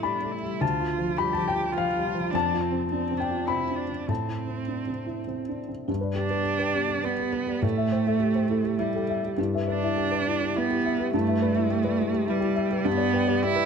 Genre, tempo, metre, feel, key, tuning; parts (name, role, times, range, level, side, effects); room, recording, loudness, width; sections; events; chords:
neoclassical piano and strings; 103 BPM; 3/4; rubato; A minor; A4 = 440 Hz
rich cello; second line; 0.0-13.7 s; G3 to G4; -27 LUFS; right 5 dB
dark baby grand piano; accompaniment; 0.0-13.7 s; D2 to C6; -26 LUFS; left 2 dB
folk marimba with soft mallets; arpeggios; 5.9-13.7 s; E4 to G5; -32 LUFS; left 7 dB; tape echo
light reverb; close, detailed microphones; -24 LUFS; side -6 dB against mid
0.0-5.9 A section; 5.9-13.7 B section
0.0 Am7; 0.6 Dm; 2.3 F5; 4.1 Am; 5.9 G; 7.6 Am7; 9.4 Em7/G; 12.9 G